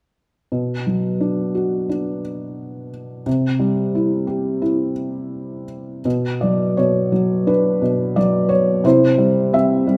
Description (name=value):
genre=classical, lyrical solo piano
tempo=87 BPM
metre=4/4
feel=rubato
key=B minor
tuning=A4 = 440 Hz
part: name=felt-muted upright piano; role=solo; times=0.5-10.0 s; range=B2 to E5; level=-19 LUFS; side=equal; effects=none
room=moderate recital hall reverb, RT60 1.4 s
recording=none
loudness=-19 LUFS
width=mono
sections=0.5-6.1 A section; 6.1-10.0 B section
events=none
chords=0.5 Bm; 3.3 C; 6.1 Bm; 8.8 C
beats=| 0.52 1.21 1.90 2.59 | 3.27 3.94 4.62 5.32 | 6.05 6.77 7.47 8.16 | 8.85 9.53